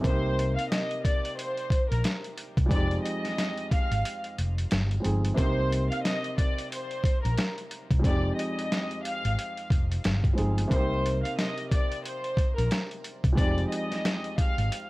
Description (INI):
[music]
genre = hip hop, boom-bap hip-hop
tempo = 90 BPM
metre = 4/4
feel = swing 59% on 16ths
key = C minor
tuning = A4 = 440 Hz
[part]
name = warm studio violin section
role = melody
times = 0.0-14.9 s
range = Bb4 to F5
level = -32 LUFS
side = equal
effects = high-pass filter, low-pass filter, tape echo
[part]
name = dark concert grand piano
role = accompaniment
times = 0.0-14.9 s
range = F2 to Ab4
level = -33 LUFS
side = equal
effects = cassette tape, high-pass filter, low-pass filter
[part]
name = mellow fretless electric bass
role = bass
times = 0.0-14.7 s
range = F1 to C2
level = -27 LUFS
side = equal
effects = ensemble chorus
[part]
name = dusty soul sampler-style drum kit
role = drums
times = 0.0-14.9 s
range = hi-hat, kick drum, snare drum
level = -27 LUFS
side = equal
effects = none
[sound]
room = small room ambience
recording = vinyl crackle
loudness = -25 LUFS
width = side -20 dB against mid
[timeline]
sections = 0.0-14.9 A section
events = kick muted 4.0-5.4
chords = 0.0 Cm7; 2.7 Fm7; 5.4 Cm7; 8.0 Fm7; 10.7 Cm7; 13.4 Fm7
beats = | 0.04 0.71 1.38 2.04 | 2.71 3.38 4.04 4.71 | 5.38 6.04 6.71 7.38 | 8.04 8.71 9.38 10.04 | 10.71 11.38 12.04 12.71 | 13.38 14.04 14.71